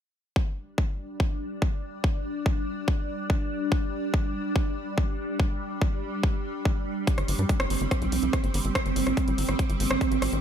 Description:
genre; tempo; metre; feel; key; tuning
psychedelic trance; 143 BPM; 4/4; straight; unclear; A4 = 439 Hz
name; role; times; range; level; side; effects
evolving wavetable pad; sustained chords; 1.0-10.4 s; G3 to D4; -30 LUFS; right 2 dB; ensemble chorus, built-in reverb, phaser, sidechain pumping
electronic kick drum; drums; 0.4-10.1 s; none; -26 LUFS; equal; overdrive, studio reverb
big-room dance drum kit; drums; 7.1-10.4 s; hi-hat, rim click; -31 LUFS; equal; overdrive, studio reverb
tight sequencer bass; bass; 7.2-10.4 s; G1 to G2; -28 LUFS; equal; none
room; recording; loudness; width
light reverb, digital ambience; none; -25 LUFS; side -9 dB against mid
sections
0.4-10.4 A section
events
none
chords
0.4 G5

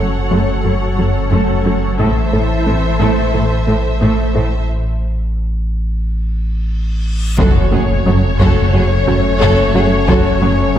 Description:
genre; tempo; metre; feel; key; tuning
cinematic, hybrid orchestral and electronic film score; 89 BPM; 4/4; straight; F# minor; A4 = 439 Hz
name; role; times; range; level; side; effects
rich symphonic violin section; second line; 0.0-10.8 s; G#4 to F#5; -23 LUFS; left 2 dB; none
warm symphonic viola section; accompaniment; 0.0-10.8 s; A3 to A4; -23 LUFS; right 2 dB; low-pass filter
analog string pad; sustained chords; 0.0-10.8 s; E3 to C#5; -21 LUFS; left 1 dB; ensemble chorus, low-pass filter
thumb-piano-like synth pluck; arpeggios; 0.0-10.8 s; F#3 to A4; -25 LUFS; right 2 dB; none
plucky analog bass; riff; 0.0-10.8 s; F#2 to A3; -20 LUFS; left 2 dB; low-pass filter
pure sine sub bass; bass; 0.0-10.8 s; F#1 to A1; -18 LUFS; equal; none
rich symphonic cello section; bass; 0.0-10.8 s; F#2 to A2; -20 LUFS; right 1 dB; none
taiko ensemble; drums; 2.0-3.3, 7.4-10.7 s; none; -19 LUFS; equal; none
reverse cymbal and impact; sound effects; 7.0-10.1 s; none; -22 LUFS; equal; none
warm symphonic violin section; melody; 7.4-10.8 s; C#5; -21 LUFS; left 2 dB; low-pass filter
warm French horn section; sustained chords; 7.4-10.8 s; A3 to C#4; -22 LUFS; left 3 dB; low-pass filter
rich symphonic double bass section; bass; 7.4-10.8 s; F#1; -19 LUFS; right 2 dB; none
room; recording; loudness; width
wet scoring stage reverb, RT60 1.9 s; heard from further back in the room; -12 LUFS; side -10 dB against mid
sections
0.0-7.4 A section; 7.4-10.8 B section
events
filter sweep 0.0-7.4; break 4.7-7.4; reverse cymbal 7.0-7.4; impact 7.4-10.1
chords
0.0 F#m; 2.0 Am; 7.4 F#m

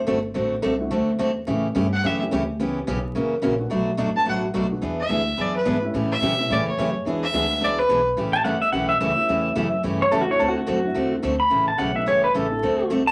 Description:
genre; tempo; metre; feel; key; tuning
country; 215 BPM; 4/4; swing 60% on 8ths; A mixolydian; A4 = 441 Hz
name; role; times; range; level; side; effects
upright bass; bass; 0.0-13.1 s; F#1 to B2; -32 LUFS; equal; none
picked steel-string acoustic guitar; accompaniment; 0.1-13.0 s; B2 to A4; -26 LUFS; equal; none
dark upright piano; accompaniment; 0.8-12.6 s; F#3 to A4; -34 LUFS; equal; none
clear fiddle; second line; 1.9-8.1 s; B4 to A5; -25 LUFS; equal; none
pedal steel guitar; second line; 8.3-13.1 s; F#4 to B5; -23 LUFS; equal; none
room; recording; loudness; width
wet small room reverb, RT60 0.5 s; vinyl crackle; -22 LUFS; mono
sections
0.0-8.2 A section; 8.2-13.1 A section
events
fiddle solo 0.0-8.2; pedal steel guitar solo 8.2-13.1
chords
0.0 D9; 1.5 A7; 2.6 C#m7b5; 3.1 F#7; 3.7 Bm7; 4.8 E9; 5.9 A9; 7.1 E9; 8.2 A9; 10.4 D9; 11.5 A9

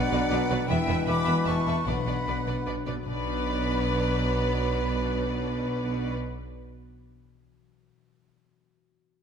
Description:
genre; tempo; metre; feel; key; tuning
cinematic, heroic adventure film score; 155 BPM; 3/4; straight; B minor; A4 = 441 Hz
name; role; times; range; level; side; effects
bright silver concert flute; second line; 0.0-6.1 s; F#5 to D6; -34 LUFS; left 3 dB; none
warm symphonic violin section; second line; 0.0-6.1 s; B4 to B5; -36 LUFS; left 2 dB; none
clear trombone section; sustained chords; 0.0-6.1 s; B2 to F#3; -37 LUFS; right 4 dB; none
dark French horn section; sustained chords; 0.0-6.1 s; B3 to E4; -36 LUFS; left 3 dB; none
concert harp; arpeggios; 0.0-7.0 s; B2 to B5; -37 LUFS; left 6 dB; none
mellow trumpet; stabs; 0.0-6.1 s; B4; -35 LUFS; right 1 dB; none
rich chamber violin section; melody; 0.1-6.1 s; D5 to E5; -36 LUFS; left 4 dB; none
clear symphonic viola section; accompaniment; 0.1-6.1 s; B3 to B4; -36 LUFS; equal; none
rich studio double bass section; bass; 0.1-6.1 s; E1 to B1; -32 LUFS; right 3 dB; none
rich symphonic cello section; bass; 0.1-6.1 s; E2 to B2; -31 LUFS; right 2 dB; none
timpani; percussion; 1.9-6.6 s; B2; -38 LUFS; left 4 dB; none
room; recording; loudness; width
moderate scoring stage reverb, RT60 1.9 s; none; -25 LUFS; side -7 dB against mid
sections
0.0-3.1 A section; 3.1-5.4 B section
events
none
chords
0.0 Bm; 0.7 Em; 1.9 Bm

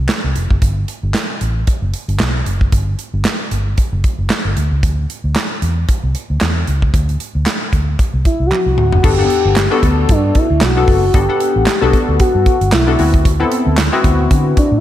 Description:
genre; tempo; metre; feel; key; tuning
early-eighties boogie funk; 114 BPM; 4/4; swing 56% on 16ths; G major; A4 = 440 Hz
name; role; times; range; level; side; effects
vintage muted fingered electric bass; bass; 0.0-14.8 s; F1 to D3; -16 LUFS; equal; none
modern studio drum kit; drums; 0.1-14.7 s; crash cymbal, handclaps, hi-hat, kick drum, snare drum, toms; -16 LUFS; equal; none
group handclap; percussion; 0.1-13.9 s; none; -27 LUFS; right 4 dB; none
gliding portamento lead; melody; 8.3-14.8 s; D4 to G4; -16 LUFS; left 1 dB; chorus, ping-pong delay
funky polysynth comp; accompaniment; 9.0-14.7 s; Bb3 to F#5; -17 LUFS; left 4 dB; chorus
room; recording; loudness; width
light reverb; none; -12 LUFS; side -12 dB against mid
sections
0.0-9.0 A section; 9.0-14.8 B section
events
drum fill 8.5-9.0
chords
0.0 D7 (rootless); 0.6 Gmaj7(no3); 4.6 D9; 9.0 Gmaj9; 13.0 D13

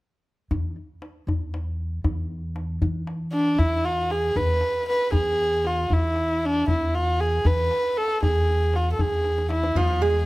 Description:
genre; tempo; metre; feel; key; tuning
Persian modal ensemble; 78 BPM (dotted quarters); 6/8; straight; E dastgah homayun; A4 = 438 Hz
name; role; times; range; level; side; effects
upright bass; bass; 0.5-10.3 s; E2 to E3; -26 LUFS; equal; none
tombak; percussion; 0.5-9.9 s; none; -27 LUFS; left 1 dB; none
warm kamancheh; melody; 3.3-10.3 s; D4 to B4; -22 LUFS; equal; none
oud; second line; 9.8-10.3 s; F3+45c to G#3; -25 LUFS; right 5 dB; none
room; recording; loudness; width
light reverb; close, detailed microphones; -21 LUFS; side -19 dB against mid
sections
0.5-3.6 A section; 3.6-10.3 B section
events
drum fill 9.2-9.8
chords
none

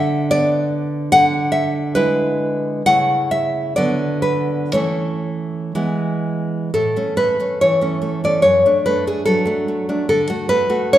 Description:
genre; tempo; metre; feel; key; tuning
romantic piece for solo classical guitar; 59-75 BPM; 2/4; rubato; A major; A4 = 440 Hz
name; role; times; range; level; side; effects
nylon-string guitar; solo; 0.0-11.0 s; F#2 to F#5; -16 LUFS; equal; none
room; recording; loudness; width
wet concert hall reverb, RT60 1.8 s; recorded in a church or concert hall; -16 LUFS; side -12 dB against mid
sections
0.0-6.7 A section; 6.7-11.0 B section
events
none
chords
0.0 Bm/D; 1.1 E7/D; 2.9 A/C#; 3.8 Bm/D; 4.7 A/E; 5.7 E; 6.7 A; 8.4 D/F#; 10.1 D

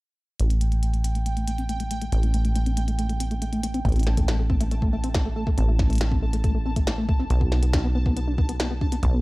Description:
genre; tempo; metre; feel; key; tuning
IDM; 139 BPM; 4/4; straight; A minor; A4 = 441 Hz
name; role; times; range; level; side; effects
deep acid bass; arpeggios; 0.4-9.2 s; A3 to D4; -30 LUFS; left 1 dB; analog chorus, analog delay
deep acid bass; bass; 0.4-9.2 s; A1 to B1; -23 LUFS; equal; tube saturation
glitchy drum kit; drums; 0.4-9.1 s; hi-hat, snare drum; -32 LUFS; equal; none
pulsing gated texture; texture; 0.4-9.2 s; G5 to A5; -37 LUFS; right 2 dB; chorus, built-in reverb
electronic kick drum; drums; 3.9-9.1 s; none; -24 LUFS; equal; none
room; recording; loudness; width
little or no reverb; dry, gritty hardware recording; -21 LUFS; side -22 dB against mid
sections
0.4-3.9 A section; 3.9-9.2 B section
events
filter sweep on acid bass 0.4-3.9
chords
0.4 A7(no3); 7.3 B7(no3)

